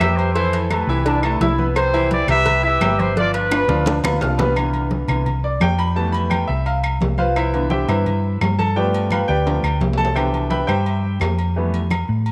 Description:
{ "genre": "latin, salsa", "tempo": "171 BPM", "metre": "4/4", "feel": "straight", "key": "C major", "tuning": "A4 = 440 Hz", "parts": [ { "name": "mellow trumpet section", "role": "melody", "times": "0.0-4.0 s", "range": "D4 to E5", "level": "-22 LUFS", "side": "equal", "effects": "none" }, { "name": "bright upright piano", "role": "accompaniment", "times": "0.0-11.8 s", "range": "B2 to F6", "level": "-25 LUFS", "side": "equal", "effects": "none" }, { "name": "hollow-body short-scale fingered electric bass", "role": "bass", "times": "0.0-12.3 s", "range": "G1 to A2", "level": "-23 LUFS", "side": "equal", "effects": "none" }, { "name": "claves", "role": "percussion", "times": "0.0-12.1 s", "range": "none", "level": "-32 LUFS", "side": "equal", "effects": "none" }, { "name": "congas", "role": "percussion", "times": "0.0-12.3 s", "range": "none", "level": "-29 LUFS", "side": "equal", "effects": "none" }, { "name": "cowbell and bongos", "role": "percussion", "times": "0.0-4.5 s", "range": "none", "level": "-30 LUFS", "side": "equal", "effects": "none" }, { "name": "timbales and agogo bells", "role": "percussion", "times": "0.0-12.3 s", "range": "none", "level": "-30 LUFS", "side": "equal", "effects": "none" }, { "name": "mellow trombone section", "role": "second line", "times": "1.0-4.6 s", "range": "D4 to F4", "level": "-28 LUFS", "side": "equal", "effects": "none" } ], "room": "moderate echo chamber reverb, RT60 2.0 s, small room ambience", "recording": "none", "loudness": "-19 LUFS", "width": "mono", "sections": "0.0-4.6 A section; 4.6-12.3 B section", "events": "drum fill 3.2-4.6, 9.5-10.2; upright piano solo 4.6-12.3", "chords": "0.4 Fmaj9#11; 1.8 Cmaj7; 3.2 G7; 4.6 Cmaj7; 6.0 Fmaj9#11; 7.4 Cmaj7; 8.8 G7; 10.2 Cmaj7; 11.6 Fmaj9#11" }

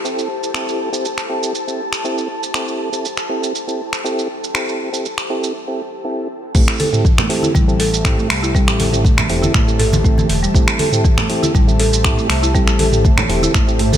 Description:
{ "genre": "afro house", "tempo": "120 BPM", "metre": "4/4", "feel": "straight", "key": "A minor pentatonic", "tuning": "A4 = 440 Hz", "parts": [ { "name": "ethereal airy pad", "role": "sustained chords", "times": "0.0-14.0 s", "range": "E4 to A5", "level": "-25 LUFS", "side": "left 1 dB", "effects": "ensemble chorus, built-in reverb, sidechain pumping" }, { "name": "percussive tonewheel organ", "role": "stabs", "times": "0.0-13.8 s", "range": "C4 to A4", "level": "-23 LUFS", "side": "right 1 dB", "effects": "chorus vibrato, slow rotary speaker, sidechain pumping, dub echo" }, { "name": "afro-pop drum kit", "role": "drums", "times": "0.1-14.0 s", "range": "crash cymbal, finger snaps, hi-hat, shaker, toms", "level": "-20 LUFS", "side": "right 1 dB", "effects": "small room ambience" }, { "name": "buzzing marimba with medium mallets", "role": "arpeggios", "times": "6.5-14.0 s", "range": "E3 to A4", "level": "-20 LUFS", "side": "right 1 dB", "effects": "sidechain pumping, dub echo" }, { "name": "smooth gliding synth bass", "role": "bass", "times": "6.5-14.0 s", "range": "E1 to C2", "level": "-20 LUFS", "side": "equal", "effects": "sidechain pumping" }, { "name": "electronic kick drum", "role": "drums", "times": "6.5-13.7 s", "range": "none", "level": "-15 LUFS", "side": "equal", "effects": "small room ambience" }, { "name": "congas", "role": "percussion", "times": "6.8-14.0 s", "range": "none", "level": "-23 LUFS", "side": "equal", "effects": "none" } ], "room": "light reverb, digital ambience", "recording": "none", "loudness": "-14 LUFS", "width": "side -10 dB against mid", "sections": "0.0-6.5 A section; 6.5-14.0 B section", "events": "break 5.5-6.5; drop 6.5-14.0", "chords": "0.0 Am7" }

